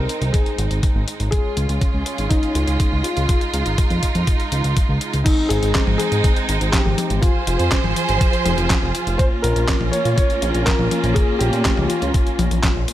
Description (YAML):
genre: italo disco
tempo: 122 BPM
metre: 4/4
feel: straight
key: Bb dorian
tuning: A4 = 441 Hz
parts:
  - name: dark concert grand piano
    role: melody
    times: 0.0-12.8 s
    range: Eb4 to Db5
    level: -25 LUFS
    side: left 2 dB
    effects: tape echo
  - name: rich symphonic string section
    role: sustained chords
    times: 0.0-12.9 s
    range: F3 to C5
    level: -23 LUFS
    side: right 3 dB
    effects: none
  - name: fat analog bass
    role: bass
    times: 0.0-12.9 s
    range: F1 to Bb2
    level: -21 LUFS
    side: equal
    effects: tube saturation
  - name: detuned 8-bit digital drum machine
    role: drums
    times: 0.1-12.9 s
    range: crash cymbal, handclaps, hi-hat, snare drum, toms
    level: -24 LUFS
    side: left 2 dB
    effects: none
  - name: electronic kick drum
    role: drums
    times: 0.3-12.7 s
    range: none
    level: -19 LUFS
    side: equal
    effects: none
room: little or no reverb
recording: none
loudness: -16 LUFS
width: side -13 dB against mid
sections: 0.0-5.3 A section; 5.3-12.9 B section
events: none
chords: 0.0 Ab; 1.3 Db; 5.3 Ab; 7.2 Fm; 9.2 Bbm